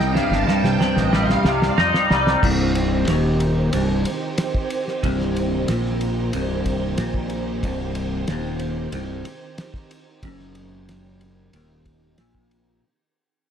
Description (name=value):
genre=psychedelic rock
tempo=92 BPM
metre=4/4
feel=straight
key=C minor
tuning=A4 = 441 Hz
part: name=soft string machine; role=sustained chords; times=0.0-12.8 s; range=Eb3 to A5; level=-28 LUFS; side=right 4 dB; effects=ensemble chorus
part: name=twangy electric guitar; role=riff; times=0.0-12.8 s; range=C2 to Eb4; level=-21 LUFS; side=left 1 dB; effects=flanger, double-tracked left and right
part: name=fuzz fingered electric bass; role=bass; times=0.0-12.8 s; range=C1 to C3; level=-26 LUFS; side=equal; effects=overdrive
part: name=metallic inharmonic drone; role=drone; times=0.0-2.5 s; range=C2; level=-38 LUFS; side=left 2 dB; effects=none
part: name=cloth-damped thuddy drum kit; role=drums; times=0.0-12.7 s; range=crash cymbal, kick drum, ride cymbal, snare drum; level=-26 LUFS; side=equal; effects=none
room=light reverb, studio ambience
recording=none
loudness=-18 LUFS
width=side -8 dB against mid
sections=0.0-2.4 A section; 2.4-12.8 B section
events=drum fill 0.0-2.4; string machine solo 0.0-2.4; fade-out 2.4-12.8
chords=0.0 Cm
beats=0.47 1.12 1.77 | 2.42 3.08 3.73 4.38 | 5.03 5.68 6.33 6.98 | 7.63 8.28 8.93 9.58 | 10.23 10.88 11.53 12.18